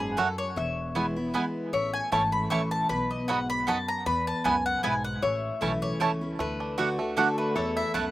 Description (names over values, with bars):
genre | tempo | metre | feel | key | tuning
bluegrass | 154 BPM | 3/4 | swing 53% on 8ths | A major | A4 = 440 Hz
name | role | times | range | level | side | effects
mandolin | melody | 0.0-8.1 s | G#4 to C#6 | -29 LUFS | left 1 dB | slapback echo
lap resonator guitar | second line | 0.0-8.1 s | A4 to E5 | -33 LUFS | left 4 dB | none
picked steel-string acoustic guitar | accompaniment | 0.0-8.1 s | E2 to F#4 | -31 LUFS | equal | none
upright bass | bass | 0.0-8.1 s | E1 to E2 | -37 LUFS | equal | none
bluegrass banjo | melody | 0.2-8.1 s | A3 to F#4 | -34 LUFS | right 4 dB | slapback echo
mandolin | stabs | 0.2-8.0 s | A3 to B5 | -28 LUFS | right 4 dB | slapback echo
room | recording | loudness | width
little or no reverb | recorded outdoors, with no room sound | -25 LUFS | side -15 dB against mid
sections
0.0-6.4 A section; 6.4-8.1 B section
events
none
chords
0.0 F#m; 0.6 E; 1.7 A; 2.9 B; 4.1 E; 5.2 A; 6.4 D; 7.6 Esus4